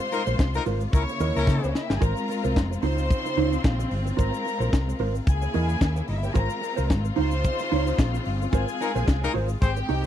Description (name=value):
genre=disco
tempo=110 BPM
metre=4/4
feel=swing 56% on 16ths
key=Ab major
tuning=A4 = 440 Hz
part: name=clear studio string section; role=second line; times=0.0-10.1 s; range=C4 to Db6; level=-31 LUFS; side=left 2 dB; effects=none
part: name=mellow electric guitar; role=accompaniment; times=0.0-10.0 s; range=Eb4 to Eb5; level=-30 LUFS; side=right 8 dB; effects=analog chorus
part: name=clear studio string section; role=sustained chords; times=0.0-10.1 s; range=C3 to G5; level=-32 LUFS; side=left 2 dB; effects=none
part: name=warm horn section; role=stabs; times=0.1-1.7, 8.8-9.7 s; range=C4 to C5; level=-28 LUFS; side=left 5 dB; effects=none
part: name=tight funk drum kit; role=drums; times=0.1-10.0 s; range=hi-hat, kick drum, snare drum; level=-22 LUFS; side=equal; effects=none
part: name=tube shaker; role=percussion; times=0.1-10.1 s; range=none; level=-50 LUFS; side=left 14 dB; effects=none
part: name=hollow-body short-scale fingered electric bass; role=bass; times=0.3-10.1 s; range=F1 to Db3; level=-26 LUFS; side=equal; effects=none
room=little or no reverb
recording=dry, close 1970s-style studio recording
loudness=-22 LUFS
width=side -10 dB against mid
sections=0.0-10.1 A section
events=band accent 0.0-2.0, 8.5-10.1; drum fill 1.5-2.0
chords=0.0 Ab69; 0.9 Dbm6; 2.0 Ab69; 2.8 Dbmaj9; 4.2 Ab69; 5.3 Dbm6; 6.4 Ab69; 7.2 Dbmaj9; 8.5 Ab69